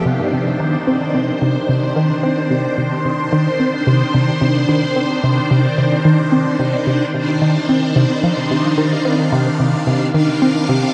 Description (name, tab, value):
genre	ambient, sequencer-driven space music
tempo	110 BPM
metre	4/4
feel	straight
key	C minor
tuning	A4 = 440 Hz
part	phased string machine	sustained chords	0.0-10.9 s	Eb3 to F5	-20 LUFS	equal	ensemble chorus, phaser
part	bubbling stepped-filter texture	texture	0.0-10.9 s	Eb3 to G4	-35 LUFS	equal	none
part	tight sequenced synth	riff	0.1-10.8 s	C3 to C4	-18 LUFS	equal	chorus, phaser, delay
room	wet huge ambient reverb, RT60 8.2 s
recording	worn, warbling old tape, cassette tape, warbly pitch drift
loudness	-16 LUFS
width	mono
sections	0.1-10.9 A section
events	none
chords	0.1 Cmadd9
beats	| 0.05 0.60 1.15 1.69 | 2.24 2.78 3.33 3.87 | 4.42 4.96 5.51 6.05 | 6.60 7.14 7.69 8.24 | 8.78 9.33 9.87 10.42